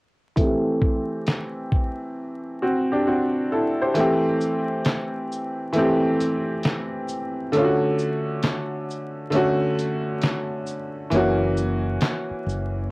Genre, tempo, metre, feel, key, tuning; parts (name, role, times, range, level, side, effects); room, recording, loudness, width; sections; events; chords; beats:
lo-fi hip hop; 67 BPM; 4/4; swing 65% on 16ths; A4 = 441 Hz
bright upright piano; accompaniment; 0.4-12.9 s; D3 to C5; -22 LUFS; equal; low-pass filter, cassette tape
lo-fi sampler-style drum kit; drums; 0.4-12.7 s; handclaps, hi-hat, kick drum, shaker, snare drum; -24 LUFS; equal; cassette tape
fretless electric bass; bass; 11.1-12.9 s; F#1; -25 LUFS; equal
light reverb; home recording on cassette, vinyl crackle; -21 LUFS; side -25 dB against mid
0.4-4.0 A section; 4.0-12.9 B section
filter sweep on upright piano 0.4-4.0; silent gap 2.2-4.0; kick muted 4.0-12.9
0.4 Am7; 7.5 Dmaj7; 11.1 F#7
| 0.37 1.26 2.16 3.06 | 3.95 4.85 5.74 6.64 | 7.53 8.43 9.32 10.22 | 11.12 12.01 12.91